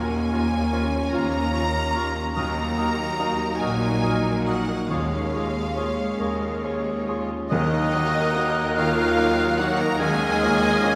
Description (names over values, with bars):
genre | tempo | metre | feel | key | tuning
cinematic, emotional film score for orchestra | 47 BPM (dotted quarters) | 6/8 | uneven beats, rubato | Eb minor | A4 = 440 Hz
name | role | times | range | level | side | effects
rich studio violin section | melody | 0.0-11.0 s | Eb4 to Bb5 | -33 LUFS | equal | none
clear studio violin section | second line | 0.0-11.0 s | Ab3 to Bb5 | -35 LUFS | equal | none
warm clarinet | second line | 0.0-11.0 s | Bb3 to Bb4 | -38 LUFS | equal | none
warm oboe | second line | 0.0-11.0 s | Ab4 to Bb5 | -34 LUFS | equal | none
bright grand piano | accompaniment | 0.0-11.0 s | Eb2 to Bb4 | -31 LUFS | equal | none
rich studio viola section | accompaniment | 0.0-11.0 s | Ab3 to Eb5 | -32 LUFS | equal | none
warm French horn section | sustained chords | 0.0-11.0 s | Eb3 to F4 | -31 LUFS | equal | none
clear studio double bass section | bass | 0.0-11.0 s | Bb1 to Eb2 | -32 LUFS | equal | none
rich studio cello section | bass | 0.0-11.0 s | Eb2 to Eb3 | -33 LUFS | equal | none
silver concert flute | second line | 0.3-11.0 s | Db6 to Gb6 | -35 LUFS | equal | none
timpani | percussion | 2.4-8.7 s | Eb3 | -35 LUFS | equal | none
room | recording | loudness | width
wet church reverb, RT60 3.0 s | none | -23 LUFS | mono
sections
0.0-7.5 A section; 7.5-11.0 B section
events
none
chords
0.0 Bbm/Eb; 2.4 Ebm; 4.9 Db/Eb; 7.5 Ebm; 10.0 Bbm/Eb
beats
1.14 | 2.38 3.62 | 4.91 6.21 | 7.51 8.77 | 10.02